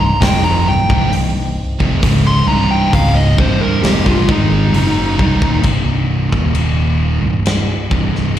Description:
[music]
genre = stoner and doom metal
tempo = 66 BPM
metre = 4/4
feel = straight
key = C minor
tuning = A4 = 439 Hz
[part]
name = fuzz lead guitar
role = melody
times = 0.0-5.6 s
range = Eb4 to C6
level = -18 LUFS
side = equal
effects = distortion, slapback echo
[part]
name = mellow tonewheel organ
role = sustained chords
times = 0.0-5.6 s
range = Eb3 to Eb4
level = -30 LUFS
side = left 1 dB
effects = none
[part]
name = heavy high-gain guitar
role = riff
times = 0.0-5.6 s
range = C2 to Ab3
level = -23 LUFS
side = left 2 dB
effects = distortion, slapback echo
[part]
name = thick fuzz guitar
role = riff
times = 0.0-8.4 s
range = C2 to Ab3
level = -21 LUFS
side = left 8 dB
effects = distortion, slapback echo
[part]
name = thick fuzz guitar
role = riff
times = 0.0-8.4 s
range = C2 to Ab3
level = -18 LUFS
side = right 5 dB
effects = distortion
[part]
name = overdriven fingered electric bass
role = bass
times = 0.0-8.4 s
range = C1 to Ab1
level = -18 LUFS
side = equal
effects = none
[part]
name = big rock drum kit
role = drums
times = 0.2-8.4 s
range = crash cymbal, hi-hat, kick drum, snare drum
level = -19 LUFS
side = equal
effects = none
[sound]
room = light reverb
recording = live gig heard through the venue's PA, recital hall reverb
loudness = -12 LUFS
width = side -11 dB against mid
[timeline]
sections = 0.0-5.6 A section; 5.6-8.4 B section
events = lead electric guitar solo 0.0-5.6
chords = 0.0 Cm; 5.6 C5; 6.3 Eb5; 7.2 C5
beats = 0.21 1.12 | 2.02 2.93 3.83 4.74 | 5.64 6.55 7.45 8.36

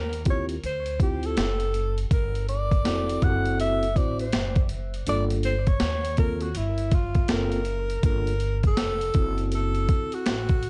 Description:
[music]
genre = hip hop, jazz-hop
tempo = 81 BPM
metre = 4/4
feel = swing 63% on 16ths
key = G dorian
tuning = A4 = 439 Hz
[part]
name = breathy alto saxophone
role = melody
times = 0.0-10.7 s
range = E4 to F#5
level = -32 LUFS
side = equal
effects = tape echo, plate reverb
[part]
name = upright bass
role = bass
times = 0.0-10.7 s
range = F1 to Eb2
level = -31 LUFS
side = equal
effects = none
[part]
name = boom bap sampler-style drum kit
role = drums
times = 0.1-10.7 s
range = hi-hat, kick drum, snare drum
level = -28 LUFS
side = equal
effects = vintage 12-bit sampler grit
[part]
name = mellow tine electric piano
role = accompaniment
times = 0.2-10.4 s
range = Bb3 to C5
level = -33 LUFS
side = equal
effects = plate reverb
[sound]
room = light reverb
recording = dark, warm production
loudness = -25 LUFS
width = mono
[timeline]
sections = 0.0-8.0 A section; 8.0-10.7 B section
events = alto saxophone solo 0.0-8.0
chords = 0.0 Ebsus2; 0.6 Dm11; 2.1 G5; 3.2 F#m7b5; 5.1 Gm7; 5.8 Ebsus2; 6.6 Gm11; 8.0 Gm7; 9.1 F#m7b5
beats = 0.63 1.37 | 2.11 2.85 3.59 4.33 | 5.07 5.82 6.56 7.30 | 8.04 8.78 9.52 10.26

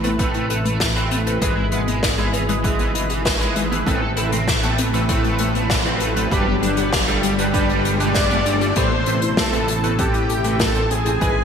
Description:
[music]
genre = synthwave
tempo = 98 BPM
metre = 4/4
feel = straight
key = A minor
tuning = A4 = 441 Hz
[part]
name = warm analog pad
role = sustained chords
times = 0.0-11.4 s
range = B2 to B4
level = -27 LUFS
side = equal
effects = chorus, sidechain pumping
[part]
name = soft round pluck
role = arpeggios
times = 0.0-11.4 s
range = G3 to B4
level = -27 LUFS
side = left 3 dB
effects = analog chorus, cassette tape, digital delay
[part]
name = overdriven semi-hollow guitar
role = riff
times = 0.0-8.7 s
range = E3 to A4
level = -28 LUFS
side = right 2 dB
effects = ensemble chorus, low-pass filter, digital delay
[part]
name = chorused polysynth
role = stabs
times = 0.0-11.4 s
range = A2 to D5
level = -25 LUFS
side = right 2 dB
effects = vintage 12-bit sampler grit, digital delay
[part]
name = fat analog bass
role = bass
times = 0.0-11.4 s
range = G1 to A1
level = -24 LUFS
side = equal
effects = tube saturation
[part]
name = unplugged drum kit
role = drums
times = 0.0-11.3 s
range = crash cymbal, hi-hat, snare drum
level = -24 LUFS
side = left 2 dB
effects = high-pass filter on hats, high-pass filter on cymbals, high-pass filter on snare, high-pass filter on room, gated reverb
[part]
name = riser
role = sound effects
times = 2.6-8.8 s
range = none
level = -29 LUFS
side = right 1 dB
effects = none
[part]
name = electronic kick drum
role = drums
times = 0.2-11.3 s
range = none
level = -24 LUFS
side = equal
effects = none
[part]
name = soft supersaw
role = melody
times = 8.2-11.4 s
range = G4 to D5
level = -23 LUFS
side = equal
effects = digital delay
[part]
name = string machine, violins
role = second line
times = 8.8-11.4 s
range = G5 to C6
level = -30 LUFS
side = right 1 dB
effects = ensemble chorus, vintage 12-bit sampler grit
[sound]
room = wet lush hall reverb, RT60 1.7 s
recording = bright 1980s-style digital production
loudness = -17 LUFS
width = side -7 dB against mid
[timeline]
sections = 0.0-8.8 A section; 8.8-11.4 B section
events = filter sweep on synth arpeggio sound 0.0-8.8; riser 2.6-8.8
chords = 0.0 Amadd9; 1.4 E/G#; 3.9 Amadd9; 6.3 G; 8.8 Amadd9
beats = 0.19 0.80 | 1.42 2.03 2.64 3.25 | 3.87 4.48 5.09 5.70 | 6.31 6.93 7.54 8.15 | 8.76 9.38 9.99 10.60 | 11.21

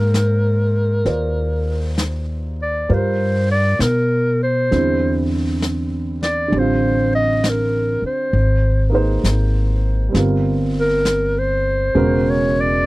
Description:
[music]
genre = jazz ballad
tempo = 66 BPM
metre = 4/4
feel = swing 66% on 8ths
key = unclear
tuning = A4 = 441 Hz
[part]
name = breathy clarinet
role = melody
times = 0.0-12.9 s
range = Bb4 to Eb5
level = -20 LUFS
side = equal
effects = none
[part]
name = warm upright piano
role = accompaniment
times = 0.0-12.9 s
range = C#3 to D5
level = -22 LUFS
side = right 3 dB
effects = none
[part]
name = upright bass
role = bass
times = 0.0-12.9 s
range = E1 to B2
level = -19 LUFS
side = equal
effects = none
[part]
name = vintage brush drum kit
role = drums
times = 0.1-12.9 s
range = brushed snare drum, hi-hat, snare drum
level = -26 LUFS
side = left 1 dB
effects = none
[sound]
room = little or no reverb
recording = dry, close 1970s-style studio recording, faint mains hum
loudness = -16 LUFS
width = side -20 dB against mid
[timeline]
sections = 0.0-12.9 A section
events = clarinet solo 0.0-12.9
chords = 0.0 Ab; 2.9 Gm7; 4.7 Cadd9/E; 6.5 Bbmaj13/A; 8.3 Ab; 10.1 Gm7; 11.9 E7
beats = 0.15 1.06 1.97 | 2.89 3.80 4.71 5.62 | 6.53 7.43 8.34 9.24 | 10.14 11.04 11.95 12.86

